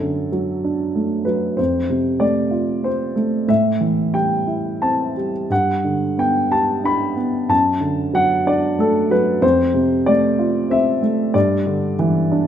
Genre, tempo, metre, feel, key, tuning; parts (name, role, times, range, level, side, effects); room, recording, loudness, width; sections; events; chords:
classical, lyrical solo piano; 85-98 BPM; 3/4; rubato; G major; A4 = 440 Hz
dark baby grand piano; solo; 0.0-12.5 s; F2 to B5; -16 LUFS; equal
moderate recital hall reverb, RT60 1.5 s; -16 LUFS; side -9 dB against mid
0.0-12.5 A section
0.0 D/F#; 1.6 F; 3.5 Am7; 5.5 G; 7.5 D/F#; 9.4 F; 11.3 G5